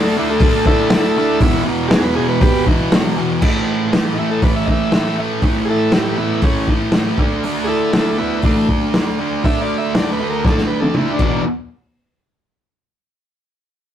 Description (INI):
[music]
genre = garage rock duo or trio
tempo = 120 BPM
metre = 4/4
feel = straight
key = unclear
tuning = A4 = 440 Hz
[part]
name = overdriven combo organ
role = melody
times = 0.0-11.4 s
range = E3 to E5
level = -20 LUFS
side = equal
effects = none
[part]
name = thick fuzz guitar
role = riff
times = 0.0-11.4 s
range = E2 to D4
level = -18 LUFS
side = right 1 dB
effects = distortion
[part]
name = crunchy breakbeat drum kit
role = drums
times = 0.4-11.3 s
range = crash cymbal, hi-hat, kick drum, snare drum, toms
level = -17 LUFS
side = equal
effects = none
[sound]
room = moderate studio reverb, RT60 0.6 s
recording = rough rehearsal-room recording, tube saturation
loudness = -14 LUFS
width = side -10 dB against mid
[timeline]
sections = 0.0-3.4 A section; 3.4-11.4 B section; 11.4-13.4 C section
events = transistor combo organ solo 0.0-3.4, 3.4-11.4; drum fill 10.4-11.4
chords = 0.0 D5; 1.4 E5; 3.4 A5; 7.2 D5; 11.2 E5; 11.4 N.C.